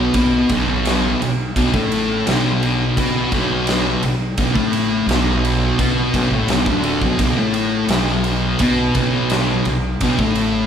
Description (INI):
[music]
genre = stoner and doom metal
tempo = 85 BPM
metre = 4/4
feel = straight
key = B minor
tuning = A4 = 439 Hz
[part]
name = thick fuzz guitar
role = riff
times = 0.0-10.7 s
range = B1 to B3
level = -17 LUFS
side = equal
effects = distortion
[part]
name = upright bass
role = bass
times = 0.0-10.7 s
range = D1 to B1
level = -25 LUFS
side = equal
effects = tube saturation
[part]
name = big rock drum kit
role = drums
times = 0.1-10.5 s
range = kick drum, ride cymbal, snare drum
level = -21 LUFS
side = equal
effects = none
[sound]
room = moderate large studio reverb, RT60 0.9 s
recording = band playing live in one room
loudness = -15 LUFS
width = side -8 dB against mid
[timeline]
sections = 0.0-10.7 A section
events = none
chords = none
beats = 0.15 0.85 | 1.55 2.26 2.96 3.67 | 4.37 5.08 5.78 6.49 | 7.19 7.90 8.60 9.31 | 10.02